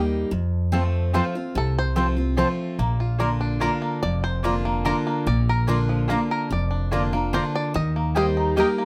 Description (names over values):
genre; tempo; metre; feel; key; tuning
bluegrass; 145 BPM; 3/4; straight; Bb major; A4 = 440 Hz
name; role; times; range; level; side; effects
picked steel-string acoustic guitar; accompaniment; 0.0-8.8 s; F2 to G4; -27 LUFS; equal; none
upright bass; bass; 0.0-8.6 s; F1 to F2; -27 LUFS; equal; none
mandolin; stabs; 0.7-8.7 s; Bb3 to Bb5; -28 LUFS; equal; none
bluegrass banjo; melody; 1.1-8.8 s; F3 to Eb5; -31 LUFS; equal; plate reverb
room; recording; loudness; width
light reverb; close, detailed microphones; -23 LUFS; mono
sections
0.0-8.8 A section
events
five-string banjo solo 0.0-8.8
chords
0.3 F; 2.8 Bb; 7.7 Eb